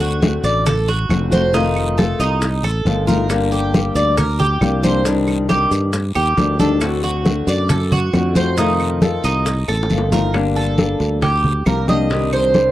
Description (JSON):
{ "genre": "latin, Cuban son and guajira", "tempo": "136 BPM", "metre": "4/4", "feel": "straight", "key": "G minor", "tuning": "A4 = 439 Hz", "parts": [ { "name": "flamenco guitar", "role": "accompaniment", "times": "0.0-12.7 s", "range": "C3 to G4", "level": "-20 LUFS", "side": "left 3 dB", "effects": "none" }, { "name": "Cuban tres", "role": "arpeggios", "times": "0.0-12.7 s", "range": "Eb4 to Eb5", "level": "-20 LUFS", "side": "right 2 dB", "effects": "slapback echo" }, { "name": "sustaining fretless electric bass", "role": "bass", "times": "0.0-12.7 s", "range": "F1 to G2", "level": "-20 LUFS", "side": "equal", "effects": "none" }, { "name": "bongos", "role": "percussion", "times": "0.0-12.7 s", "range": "none", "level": "-27 LUFS", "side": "left 4 dB", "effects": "none" }, { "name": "congas", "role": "percussion", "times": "0.0-12.7 s", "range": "none", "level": "-19 LUFS", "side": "equal", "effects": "none" }, { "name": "maracas", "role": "percussion", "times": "0.0-10.3 s", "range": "none", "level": "-34 LUFS", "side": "right 6 dB", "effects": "none" }, { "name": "guiro", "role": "percussion", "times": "0.2-12.7 s", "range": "none", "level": "-33 LUFS", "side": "left 4 dB", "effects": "none" }, { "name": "claves", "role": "percussion", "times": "0.7-12.5 s", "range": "none", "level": "-31 LUFS", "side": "right 5 dB", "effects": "none" } ], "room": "little or no reverb", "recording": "dry, close 1970s-style studio recording, lossy compression artefacts", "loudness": "-14 LUFS", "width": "side -14 dB against mid", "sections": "0.0-10.3 A section; 10.3-12.7 B section", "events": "drum fill 9.7-10.3; Cuban tres solo 10.3-12.7", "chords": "0.0 D7; 1.5 F7; 3.3 Gm; 5.1 Cmadd9; 6.8 D7; 8.6 F7; 10.3 Gm; 12.1 Cmadd9" }